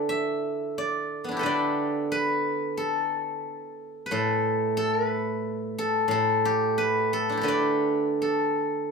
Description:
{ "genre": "chinese traditional, Chinese solo plucked strings", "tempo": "89 BPM", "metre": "4/4", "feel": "rubato", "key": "D zhi mode", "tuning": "A4 = 440 Hz", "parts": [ { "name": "steel-string zither", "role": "solo", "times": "0.0-8.9 s", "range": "A2 to E5", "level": "-24 LUFS", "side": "equal", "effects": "none" } ], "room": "light reverb", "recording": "band playing live in one room", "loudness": "-24 LUFS", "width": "side -5 dB against mid", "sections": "0.0-8.9 A section", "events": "none", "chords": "none" }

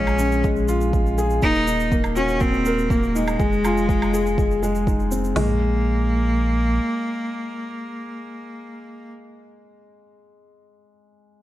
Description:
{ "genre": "piano and strings electronica", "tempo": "122 BPM", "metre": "4/4", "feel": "straight", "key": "unclear", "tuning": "A4 = 439 Hz", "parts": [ { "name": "bright cello", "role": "melody", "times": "0.0-9.1 s", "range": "Ab3 to Eb4", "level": "-25 LUFS", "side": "equal", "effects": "none" }, { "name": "felt-muted upright piano", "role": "riff", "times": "0.0-11.4 s", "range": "Ab3 to Bb4", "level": "-24 LUFS", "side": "left 2 dB", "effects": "digital delay" }, { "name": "warm sub bass", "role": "bass", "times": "0.0-6.8 s", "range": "Eb1 to Bb1", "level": "-24 LUFS", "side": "equal", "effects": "sidechain pumping" }, { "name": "shaker and woodblock", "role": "drums", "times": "0.1-5.3 s", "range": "none", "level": "-34 LUFS", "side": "right 3 dB", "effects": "overdrive" }, { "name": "organic electronic drum kit", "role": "drums", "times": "0.4-5.5 s", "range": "hi-hat, kick drum, snare drum, toms", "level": "-23 LUFS", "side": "equal", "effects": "overdrive" } ], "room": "light reverb", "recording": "dark, warm production", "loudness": "-18 LUFS", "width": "side -14 dB against mid", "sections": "0.0-5.4 A section; 5.4-9.3 B section", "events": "drop 0.0-5.4", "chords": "0.0 Bbm7; 1.4 Ebm; 3.4 Fm7; 5.4 Absus2/Bb" }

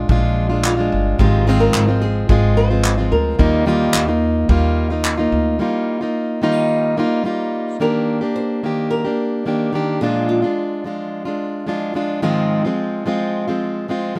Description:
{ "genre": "acoustic pop", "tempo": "109 BPM", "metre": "4/4", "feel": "straight", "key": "Eb major", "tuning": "A4 = 440 Hz", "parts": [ { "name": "fingerpicked plugged-in steel-string acoustic guitar", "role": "accompaniment", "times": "0.0-14.2 s", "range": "Ab2 to G4", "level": "-20 LUFS", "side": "equal", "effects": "none" }, { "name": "upright bass", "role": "bass", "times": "0.0-5.6 s", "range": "G1 to Eb2", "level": "-21 LUFS", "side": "equal", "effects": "none" }, { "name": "natural country drum kit", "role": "drums", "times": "0.1-5.2 s", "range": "handclaps, kick drum", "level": "-21 LUFS", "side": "equal", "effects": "none" }, { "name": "flamenco guitar", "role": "melody", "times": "0.7-11.9 s", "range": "F4 to C5", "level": "-25 LUFS", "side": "equal", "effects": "none" } ], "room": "little or no reverb", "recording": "close, detailed microphones", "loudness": "-18 LUFS", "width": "mono", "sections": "0.0-5.6 A section; 5.6-7.8 B section; 7.8-14.2 C section", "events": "none", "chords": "0.0 Bb7; 1.2 Ab6; 3.4 Ebadd9; 7.8 Ebmaj7; 10.0 Bb7; 12.2 Ab6" }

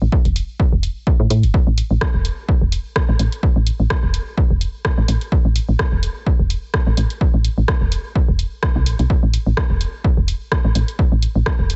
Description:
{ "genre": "minimal techno", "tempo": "127 BPM", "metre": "4/4", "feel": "swing 55% on 16ths", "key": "A minor", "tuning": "A4 = 442 Hz", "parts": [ { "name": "woody FM bass", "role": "bass", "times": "0.0-11.7 s", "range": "E1 to A2", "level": "-20 LUFS", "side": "equal", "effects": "sidechain pumping" }, { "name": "electronic kick drum", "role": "drums", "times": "0.1-11.6 s", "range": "none", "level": "-20 LUFS", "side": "equal", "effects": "none" }, { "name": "punchy analog drum machine", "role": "drums", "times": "0.3-11.8 s", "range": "hi-hat, rim click", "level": "-27 LUFS", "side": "equal", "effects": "none" } ], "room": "little or no reverb", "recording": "nothing above 8.0 kHz", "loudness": "-18 LUFS", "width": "mono", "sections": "0.0-11.8 A section", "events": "none", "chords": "none" }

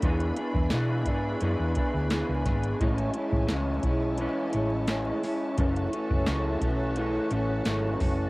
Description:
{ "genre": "indie pop, bedroom pop", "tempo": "86 BPM", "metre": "4/4", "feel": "straight", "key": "unclear", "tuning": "A4 = 438 Hz", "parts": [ { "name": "electric guitar through a small old amp", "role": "accompaniment", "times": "0.0-8.3 s", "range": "F#2 to G#4", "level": "-28 LUFS", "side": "equal", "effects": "ensemble chorus, warbly pitch drift, cassette tape" }, { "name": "rich studio string section", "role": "sustained chords", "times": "0.0-8.3 s", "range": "E4 to B5", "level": "-38 LUFS", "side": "equal", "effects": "cassette tape" }, { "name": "hollow-body short-scale fingered electric bass", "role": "bass", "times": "0.0-8.3 s", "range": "F#1 to B2", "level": "-30 LUFS", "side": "equal", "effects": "none" }, { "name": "soft vintage rhythm box", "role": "drums", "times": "0.0-8.2 s", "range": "hi-hat, kick drum, snare drum", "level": "-29 LUFS", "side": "equal", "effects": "none" } ], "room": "light reverb", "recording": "home recording on cassette, vinyl crackle", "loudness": "-25 LUFS", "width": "side -22 dB against mid", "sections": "0.0-8.3 A section", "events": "none", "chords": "0.0 E7; 2.8 Amaj7; 5.6 F#m7" }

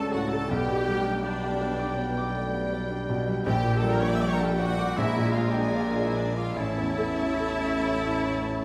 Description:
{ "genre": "classical, romantic movement for piano and orchestra", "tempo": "72-82 BPM", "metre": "4/4", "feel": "rubato", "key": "unclear", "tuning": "A4 = 438 Hz", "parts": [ { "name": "rich studio violin section", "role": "melody", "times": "0.0-8.6 s", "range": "G5 to A5", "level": "-47 LUFS", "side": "equal", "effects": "none" }, { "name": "warm grand piano", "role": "melody", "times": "0.0-8.6 s", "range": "A1 to D6", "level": "-32 LUFS", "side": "equal", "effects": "none" }, { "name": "clear studio violin section", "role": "second line", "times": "0.0-8.6 s", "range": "D5 to E6", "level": "-43 LUFS", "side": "equal", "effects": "none" }, { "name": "flute section", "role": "second line", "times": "0.0-8.6 s", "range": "D5 to E6", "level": "-42 LUFS", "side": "equal", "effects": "none" }, { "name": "mellow clarinet", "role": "second line", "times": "0.0-8.6 s", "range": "C#5 to D5", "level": "-41 LUFS", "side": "equal", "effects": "none" }, { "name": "warm oboe", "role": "second line", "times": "0.0-8.6 s", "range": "G5 to Bb5", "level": "-40 LUFS", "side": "equal", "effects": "none" }, { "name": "rich studio viola section", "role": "accompaniment", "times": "0.0-8.6 s", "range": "D4 to E5", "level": "-36 LUFS", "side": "equal", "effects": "none" }, { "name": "warm bassoon", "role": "accompaniment", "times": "0.0-8.6 s", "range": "F#3 to A3", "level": "-40 LUFS", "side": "equal", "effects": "none" }, { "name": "dark French horn section", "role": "sustained chords", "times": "0.0-8.6 s", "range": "G3 to C#4", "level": "-37 LUFS", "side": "equal", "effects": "none" }, { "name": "mellow trumpet", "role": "stabs", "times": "0.0-8.6 s", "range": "D4 to E5", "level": "-38 LUFS", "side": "equal", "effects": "none" }, { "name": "mellow tuba", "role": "bass", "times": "0.0-8.6 s", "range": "A1 to C#2", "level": "-36 LUFS", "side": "equal", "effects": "none" }, { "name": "rich studio double bass section", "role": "bass", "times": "0.0-8.6 s", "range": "A1 to C#2", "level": "-40 LUFS", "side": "equal", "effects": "none" }, { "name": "warm studio cello section", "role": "bass", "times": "0.0-8.6 s", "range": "A2 to C#3", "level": "-38 LUFS", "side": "equal", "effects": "none" } ], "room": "wet scoring stage reverb, RT60 1.6 s", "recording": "none", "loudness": "-27 LUFS", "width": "mono", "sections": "0.0-8.6 A section", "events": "none", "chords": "0.5 G/B; 3.5 Gm/Bb; 5.0 Bb7; 6.6 A" }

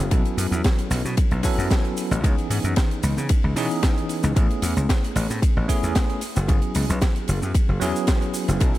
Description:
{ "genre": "nu-disco, nu disco", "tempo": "113 BPM", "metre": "4/4", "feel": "swing 54% on 16ths", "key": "unclear", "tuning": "A4 = 440 Hz", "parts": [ { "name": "bell-like tine electric piano", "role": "accompaniment", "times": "0.0-8.8 s", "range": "E3 to A4", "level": "-26 LUFS", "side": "equal", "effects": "fast stereo tremolo, sidechain pumping, analog delay" }, { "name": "slap bass", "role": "bass", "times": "0.0-8.7 s", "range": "F#1 to C#3", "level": "-23 LUFS", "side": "equal", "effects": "none" }, { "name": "electronic kick drum", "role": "drums", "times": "0.1-8.7 s", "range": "none", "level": "-20 LUFS", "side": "equal", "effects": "none" }, { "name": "tight funk drum kit", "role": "drums", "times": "0.1-8.8 s", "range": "cabasa, hi-hat, ride cymbal, snare drum", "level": "-29 LUFS", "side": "right 1 dB", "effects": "analog delay" } ], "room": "small room reverb", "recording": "echo-heavy mix", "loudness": "-19 LUFS", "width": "side -15 dB against mid", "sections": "0.0-8.8 A section", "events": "none", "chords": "0.1 B7sus4; 2.2 C#m7; 4.4 Amaj9; 6.2 F#7sus4" }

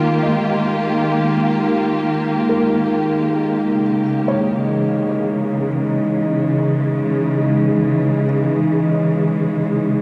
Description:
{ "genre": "ambient", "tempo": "free time", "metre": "none", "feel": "none", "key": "unclear", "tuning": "A4 = 438 Hz", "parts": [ { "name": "warm symphonic string section", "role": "sustained chords", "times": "0.0-10.0 s", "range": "Db3 to G4", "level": "-20 LUFS", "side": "equal", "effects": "none" }, { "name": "felt-muted upright piano", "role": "arpeggios", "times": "0.0-10.0 s", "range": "Bb4 to Eb5", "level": "-31 LUFS", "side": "equal", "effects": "delay" }, { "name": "analog drone", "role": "drone", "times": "0.0-10.0 s", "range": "Ab3 to Eb4", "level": "-22 LUFS", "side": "equal", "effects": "chorus" } ], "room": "wet cathedral reverb, RT60 6.3 s", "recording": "dark, warm production", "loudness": "-18 LUFS", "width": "mono", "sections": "0.0-10.0 A section", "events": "none", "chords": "0.0 Eb; 3.8 Dbmadd9" }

